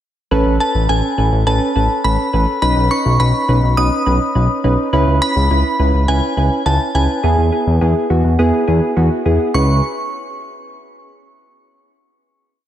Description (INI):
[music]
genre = synth-pop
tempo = 104 BPM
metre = 4/4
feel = straight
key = C# minor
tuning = A4 = 438 Hz
[part]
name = soft electric-piano-like synth keys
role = accompaniment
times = 0.3-9.8 s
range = B3 to B4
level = -18 LUFS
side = right 1 dB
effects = chorus
[part]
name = fat analog bass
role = bass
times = 0.3-9.8 s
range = A1 to E2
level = -15 LUFS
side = equal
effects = none
[part]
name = glassy synth bell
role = melody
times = 0.6-9.8 s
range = G#5 to D#6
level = -20 LUFS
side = left 1 dB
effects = chorus, diffuse ambient delay
[sound]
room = moderate plate reverb, RT60 2.9 s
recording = dreamy mix soaked in reverb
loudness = -13 LUFS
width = side -11 dB against mid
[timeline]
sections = 0.3-9.5 verse; 9.5-11.9 final chord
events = none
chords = 0.3 Aadd9; 2.6 Badd9; 4.9 C#m7; 7.2 E; 9.5 C#m7